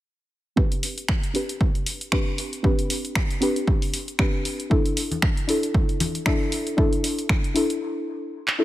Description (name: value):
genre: deep house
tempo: 116 BPM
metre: 4/4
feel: swing 56% on 16ths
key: unclear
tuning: A4 = 439 Hz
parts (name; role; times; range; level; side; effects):
- deep mellow chord stab; stabs; 0.6-8.6 s; C4 to B4; -26 LUFS; left 1 dB; chorus, dub echo
- electronic kick drum; drums; 0.6-7.4 s; none; -22 LUFS; equal; overdrive
- punchy analog drum machine; drums; 0.7-8.6 s; finger snaps, handclaps, hi-hat; -27 LUFS; equal; none
- congas; percussion; 5.1-6.1 s; none; -28 LUFS; left 2 dB; none
room: light reverb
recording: none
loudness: -21 LUFS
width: side -14 dB against mid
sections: 0.6-8.6 A section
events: filter sweep on synth stab 0.6-8.6; break 7.8-8.6; drum fill 8.5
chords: 0.6 Gadd11/C; 4.7 Dsus2